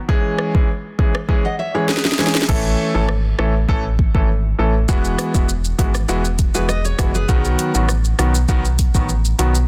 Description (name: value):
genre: dancehall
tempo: 100 BPM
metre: 4/4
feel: straight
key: unclear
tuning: A4 = 440 Hz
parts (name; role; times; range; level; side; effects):
- clear concert grand piano; accompaniment; 0.1-9.5 s; D#3 to A4; -24 LUFS; equal; none
- afro-pop drum kit; drums; 0.1-9.7 s; crash cymbal, hi-hat, kick drum, rim click, shaker, snare drum; -21 LUFS; equal; none
- fingerpicked steel-string acoustic guitar; arpeggios; 1.4-2.5, 6.5-7.4 s; E4 to F#5; -28 LUFS; equal; none
- sub bass with octave; bass; 2.5-9.7 s; E1 to B1; -21 LUFS; equal; none
room: little or no reverb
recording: dense, heavily limited modern master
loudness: -18 LUFS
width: mono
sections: 0.0-2.5 A section; 2.5-9.7 B section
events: drum fill 1.9-2.5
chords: 0.1 C#m; 2.5 A; 4.9 Eadd9; 7.3 B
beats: | 0.09 0.69 1.29 1.89 | 2.49 3.09 3.69 4.29 | 4.89 5.49 6.09 6.69 | 7.29 7.89 8.49 9.09